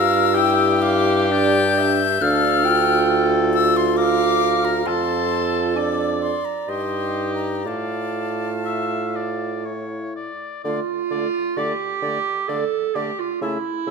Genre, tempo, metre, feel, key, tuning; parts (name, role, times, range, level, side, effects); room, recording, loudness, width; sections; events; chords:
classical, slow romantic movement for wind quintet; 59-69 BPM; 3/4; rubato; D minor; A4 = 440 Hz
concert flute; melody; 0.0-13.9 s; F5 to G6; -23 LUFS; left 10 dB
clear oboe; second line; 0.0-13.9 s; G4 to E5; -27 LUFS; left 5 dB
warm French horn; accompaniment; 0.0-13.9 s; A3 to F4; -25 LUFS; right 3 dB
warm clarinet; accompaniment; 0.0-13.9 s; E4 to A5; -25 LUFS; right 6 dB
mellow bassoon; bass; 0.0-13.9 s; D2 to D3; -24 LUFS; right 1 dB
moderate recital hall reverb, RT60 1.6 s; -18 LUFS; side -5 dB against mid
0.0-10.6 A section; 10.6-13.9 B section
0.0 G7(no3); 2.2 Dm; 4.9 Dm/F; 6.7 Eb/G; 7.7 Dm/A; 9.7 A; 10.6 Dm